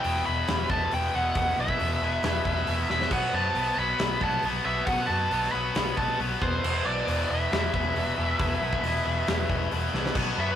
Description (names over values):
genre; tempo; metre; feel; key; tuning
hard rock; 136 BPM; 4/4; straight; unclear; A4 = 440 Hz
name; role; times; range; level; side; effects
biting lead guitar; melody; 0.0-10.6 s; B4 to B5; -28 LUFS; right 1 dB; overdrive
distorted electric guitar; riff; 0.0-10.6 s; E2 to B3; -33 LUFS; right 4 dB; distortion
tight distorted guitar; riff; 0.0-10.6 s; E2 to B3; -30 LUFS; left 6 dB; distortion
picked electric bass; bass; 0.0-10.5 s; E1 to F#2; -31 LUFS; equal; none
big rock drum kit; drums; 0.0-10.3 s; crash cymbal, hi-hat, kick drum, snare drum; -31 LUFS; equal; none
room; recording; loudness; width
moderate stone room reverb, RT60 1.4 s; rough rehearsal-room recording; -24 LUFS; side -10 dB against mid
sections
0.0-10.2 A section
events
drum fill 2.9, 9.9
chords
0.0 E5; 3.1 B5; 6.4 E5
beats
0.04 0.48 0.92 | 1.36 1.80 2.24 2.68 | 3.12 3.56 4.00 4.44 | 4.88 5.32 5.76 6.20 | 6.64 7.08 7.52 7.96 | 8.40 8.84 9.28 9.72 | 10.16